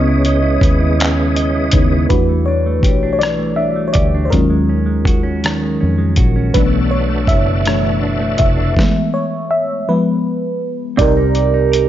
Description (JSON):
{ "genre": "slow six-eight R&B", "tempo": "54 BPM (dotted quarters)", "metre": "6/8", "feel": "straight", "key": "unclear", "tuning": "A4 = 439 Hz", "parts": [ { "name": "clean electric guitar", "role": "second line", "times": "0.0-11.9 s", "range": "B2 to D#5", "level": "-20 LUFS", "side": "right 4 dB", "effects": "none" }, { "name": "mellow FM electric piano", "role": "accompaniment", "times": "0.0-11.9 s", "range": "C#3 to E5", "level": "-17 LUFS", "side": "equal", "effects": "chorus, phaser" }, { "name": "tonewheel organ", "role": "sustained chords", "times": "0.0-2.1, 6.5-8.7 s", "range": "C#3 to E5", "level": "-22 LUFS", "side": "left 1 dB", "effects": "chorus vibrato, fast rotary speaker" }, { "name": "vintage muted fingered electric bass", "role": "bass", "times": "0.0-11.9 s", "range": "E#1 to E#2", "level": "-17 LUFS", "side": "equal", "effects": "none" }, { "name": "dusty soul sampler-style drum kit", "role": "drums", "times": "0.2-11.9 s", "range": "handclaps, hi-hat, kick drum, rim click, snare drum", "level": "-16 LUFS", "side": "equal", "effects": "none" } ], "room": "light reverb", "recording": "nothing above 7.5 kHz", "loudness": "-13 LUFS", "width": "side -12 dB against mid", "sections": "0.0-2.1 A section; 2.1-11.0 B section", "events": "FM electric piano solo 0.0-2.1, 2.1-11.0; stop 8.8-11.0", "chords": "0.0 C#m9; 2.1 Em11; 4.3 D#m11; 6.5 Bm11; 8.8 Eadd11; 9.9 Fdim; 11.0 Cm9", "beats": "0.99 | 2.10 3.21 | 4.32 5.43 | 6.55 7.66 | 8.77 9.88 | 10.99" }